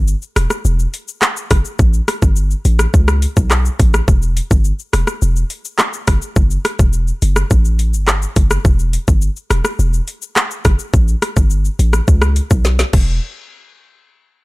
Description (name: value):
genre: dancehall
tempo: 105 BPM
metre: 4/4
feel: straight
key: E dorian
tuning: A4 = 443 Hz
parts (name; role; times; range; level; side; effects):
- warm 808-style bass; bass; 0.0-13.2 s; E1 to C#2; -14 LUFS; equal; none
- island pop drum kit; drums; 0.1-13.1 s; crash cymbal, handclaps, hi-hat, kick drum, rim click, shaker, snare drum; -15 LUFS; equal; overdrive
room: little or no reverb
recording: none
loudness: -13 LUFS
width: side -22 dB against mid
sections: 0.0-13.2 A section; 13.2-14.4 B section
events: drum fill 12.6-13.2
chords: none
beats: 0.08 0.65 1.22 | 1.79 2.36 2.94 3.51 | 4.08 4.65 5.22 5.79 | 6.36 6.93 7.51 8.08 | 8.65 9.22 9.79 10.36 | 10.94 11.51 12.08 12.65